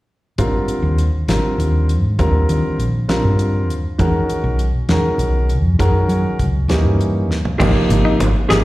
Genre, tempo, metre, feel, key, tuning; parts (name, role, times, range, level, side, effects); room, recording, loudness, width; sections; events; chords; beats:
electric jazz fusion; 67 BPM (dotted quarters); 6/8; straight; A4 = 441 Hz
warm baby grand piano; accompaniment; 0.4-8.6 s; C3 to Bb4; -19 LUFS; right 1 dB; slapback echo
woody fretless electric bass; bass; 0.4-8.6 s; Ab1 to Gb3; -16 LUFS; equal
damped 70s drum kit; drums; 0.4-8.6 s; crash cymbal, hi-hat, kick drum, snare drum, toms; -22 LUFS; equal
clean electric guitar; stabs; 7.6-8.6 s; C4 to Ab4; -21 LUFS; left 3 dB; lush chorus, slapback echo
congas; percussion; 7.6-8.6 s; -21 LUFS; right 1 dB; slapback echo
light reverb; live gig heard through the venue's PA, recital hall reverb; -14 LUFS; side -17 dB against mid
0.4-7.6 A section; 7.6-8.6 B section
drum fill 7.3
0.4 Abmaj9; 2.2 Ebmaj9; 4.0 Emaj9; 5.8 Gbadd9; 6.7 Eb7b9; 7.6 Abmaj9
| 0.39 1.29 | 2.19 3.09 | 3.99 4.89 | 5.79 6.70 | 7.60 8.50